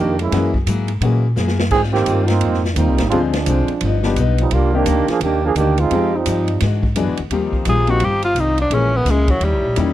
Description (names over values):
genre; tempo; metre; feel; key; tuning
jazz, big band swing; 172 BPM; 4/4; swing 63% on 8ths; Eb major; A4 = 440 Hz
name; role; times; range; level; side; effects
warm trombone section; second line; 0.0-6.6 s; Eb3 to Ab4; -18 LUFS; right 5 dB; none
picked steel-string acoustic guitar; accompaniment; 0.0-9.9 s; G2 to Ab4; -24 LUFS; left 6 dB; none
upright bass; bass; 0.0-9.9 s; G1 to Bb2; -18 LUFS; equal; none
swinging big-band drum kit; drums; 0.2-9.9 s; crash cymbal, hi-hat, kick drum, ride cymbal, snare drum; -25 LUFS; equal; none
warm upright piano; accompaniment; 0.3-9.9 s; Eb3 to Ab4; -22 LUFS; left 6 dB; none
clear saxophone section; sustained chords; 7.3-9.9 s; Db4 to F5; -30 LUFS; left 1 dB; none
warm tenor saxophone; melody; 7.7-9.9 s; Gb3 to Ab4; -18 LUFS; equal; none
room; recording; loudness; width
little or no reverb; dry, close 1970s-style studio recording; -15 LUFS; side -13 dB against mid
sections
0.0-7.3 A section; 7.3-9.9 B section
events
trombone section solo 0.0-7.3; drum fill 1.4-1.7; tenor saxophone solo 7.3-9.9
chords
0.3 Gb9; 1.7 Abmaj13; 3.1 Dm7b5; 3.8 G7b13; 4.5 Cm9; 5.9 Fm9; 6.6 E9; 7.3 Eb69; 8.7 Bbm7b5; 9.4 Eb7b9